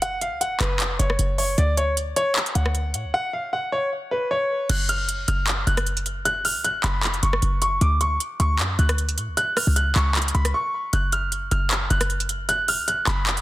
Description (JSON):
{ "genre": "hip hop, trap", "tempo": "154 BPM", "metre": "4/4", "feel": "half-time", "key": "unclear", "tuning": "A4 = 440 Hz", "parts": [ { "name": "bright concert grand piano", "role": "melody", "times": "0.0-13.4 s", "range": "B4 to F#6", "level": "-24 LUFS", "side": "equal", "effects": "ping-pong delay" }, { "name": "short 808-style bass", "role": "bass", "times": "0.0-13.4 s", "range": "E#1 to A2", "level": "-23 LUFS", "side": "equal", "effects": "none" }, { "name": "trap drum kit", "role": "drums", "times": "0.0-13.4 s", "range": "crash cymbal, handclaps, hi-hat, rim click", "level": "-25 LUFS", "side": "equal", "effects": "none" } ], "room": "digital ambience", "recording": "dense, heavily limited modern master", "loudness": "-20 LUFS", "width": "side -16 dB against mid", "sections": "0.0-4.7 A section; 4.7-13.4 B section", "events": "break 3.1-4.7, 10.5-10.9", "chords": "0.0 F#5; 1.6 D; 3.1 N.C.; 4.7 F#5; 7.8 D; 9.4 C#sus4; 10.9 F#5", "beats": "| 0.02 0.41 0.80 1.19 | 1.58 1.97 2.36 2.75 | 3.14 3.53 3.92 4.31 | 4.70 5.09 5.48 5.87 | 6.25 6.64 7.03 7.42 | 7.81 8.20 8.59 8.98 | 9.37 9.76 10.15 10.54 | 10.93 11.32 11.71 12.10 | 12.49 12.88 13.27" }